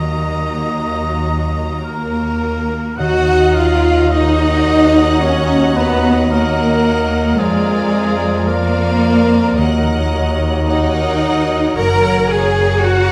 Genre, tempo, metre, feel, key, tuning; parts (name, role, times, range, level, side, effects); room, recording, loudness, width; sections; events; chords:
classical, slow romantic movement for symphony orchestra; 55 BPM; 4/4; rubato; Eb minor; A4 = 440 Hz
clear symphonic violin section; melody; 0.0-13.1 s; F5 to Bb5; -29 LUFS; equal
rich chamber violin section; second line; 0.0-13.1 s; Ab4 to Bb5; -29 LUFS; equal
warm oboe; second line; 0.0-13.1 s; Ab4 to Bb5; -26 LUFS; equal
rich chamber viola section; accompaniment; 0.0-13.1 s; Bb3 to Eb5; -30 LUFS; equal
dark French horn section; sustained chords; 0.0-13.1 s; Gb3 to Bb4; -22 LUFS; equal
concert harp; arpeggios; 0.0-13.1 s; Gb2 to D5; -27 LUFS; equal
clear studio cello section; bass; 0.0-13.1 s; Eb3 to Bb4; -20 LUFS; equal
rich chamber double bass section; bass; 0.0-13.1 s; Gb1 to F2; -21 LUFS; equal
clear clarinet; second line; 3.0-13.1 s; Db5 to Eb5; -28 LUFS; equal
small flute group; second line; 3.0-13.1 s; Bb5; -32 LUFS; equal
mellow bassoon; accompaniment; 3.0-13.1 s; F3 to Gb3; -26 LUFS; equal
wet recital hall reverb, RT60 1.4 s; -15 LUFS; mono
0.0-3.0 A section; 3.0-13.1 B section
0.0 Ebm; 7.4 Bb7/F; 9.6 Ebm; 11.8 Gb